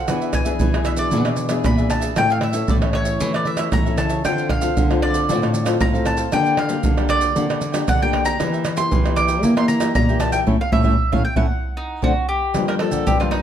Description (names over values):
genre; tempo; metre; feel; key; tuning
samba and choro; 116 BPM; 4/4; straight; D minor; A4 = 442 Hz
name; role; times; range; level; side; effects
mandolin; melody; 0.0-13.4 s; Eb4 to D6; -23 LUFS; equal; plate reverb
cavaquinho; accompaniment; 0.0-13.4 s; D4 to G5; -31 LUFS; right 7 dB; none
nylon-string guitar; accompaniment; 0.0-13.4 s; G2 to A4; -25 LUFS; left 6 dB; none
nylon-string guitar; bass; 0.1-13.4 s; G2 to Bb3; -23 LUFS; left 1 dB; none
maracas, surdo, pandeiro and tamborim; percussion; 0.1-13.4 s; none; -21 LUFS; right 2 dB; none
room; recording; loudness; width
moderate large studio reverb, RT60 1.0 s; dark, warm production; -17 LUFS; side -9 dB against mid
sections
0.0-12.5 A section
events
band accent 10.5-12.5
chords
0.1 E7; 2.2 A; 4.2 Dm7; 6.3 Gm/D; 8.4 Edim; 10.5 A; 11.5 D7; 12.5 Gm7